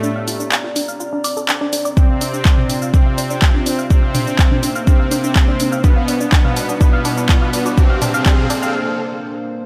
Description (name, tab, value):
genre	melodic techno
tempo	124 BPM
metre	4/4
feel	straight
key	unclear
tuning	A4 = 440 Hz
part	soft supersaw	melody	0.0-8.7 s	A2 to C4	-24 LUFS	equal	digital delay
part	dark analog pad	sustained chords	0.0-9.7 s	G3 to Bb5	-29 LUFS	equal	chorus, phaser, sidechain pumping
part	tight sequenced synth	arpeggios	0.0-8.7 s	D4 to F5	-26 LUFS	equal	chorus, phaser, sidechain pumping, digital delay
part	techno drum kit	drums	0.0-8.7 s	handclaps, hi-hat, shaker, toms	-23 LUFS	equal	overdrive, studio ambience
part	electronic kick drum	drums	2.0-8.4 s	none	-15 LUFS	equal	studio ambience
part	riser	sound effects	5.9-8.7 s	none	-31 LUFS	equal	none
room	light reverb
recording	none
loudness	-16 LUFS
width	mono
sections	0.0-9.7 A section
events	build-up 0.0-9.7; filter sweep on synth arpeggio sound 0.0-9.7; riser 5.9-8.7; break 8.7-9.7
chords	0.0 Bbadd9; 2.0 Dm7; 3.9 Cm7; 5.8 G; 7.8 Bbadd9